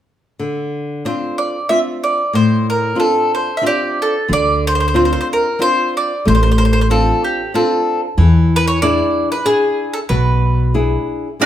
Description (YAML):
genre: italian folk, Italian serenade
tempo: 93 BPM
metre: 3/4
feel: swing 54% on 8ths, rubato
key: D minor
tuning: A4 = 440 Hz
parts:
  - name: nylon-string guitar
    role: accompaniment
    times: 0.4-11.5 s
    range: A2 to G#4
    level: -18 LUFS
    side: left 2 dB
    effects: none
  - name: bowl-back mandolin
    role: melody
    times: 1.1-11.5 s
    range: F#4 to E5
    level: -17 LUFS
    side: right 1 dB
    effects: none
  - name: upright bass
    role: bass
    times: 4.3-11.0 s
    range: A1 to E2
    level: -14 LUFS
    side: equal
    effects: none
  - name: mandolin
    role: second line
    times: 11.4-11.5 s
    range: D4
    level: -11 LUFS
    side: right 6 dB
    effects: none
room: moderate large studio reverb, RT60 1.2 s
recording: band playing live in one room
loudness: -13 LUFS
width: side -11 dB against mid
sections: 0.4-4.3 A section; 4.3-11.5 B section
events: none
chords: 0.4 Dm7; 8.2 E7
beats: | 0.38 1.04 1.69 | 2.33 2.97 3.63 | 4.29 4.95 5.61 | 6.25 6.89 7.53 | 8.17 8.81 9.46 | 10.10 10.76 11.41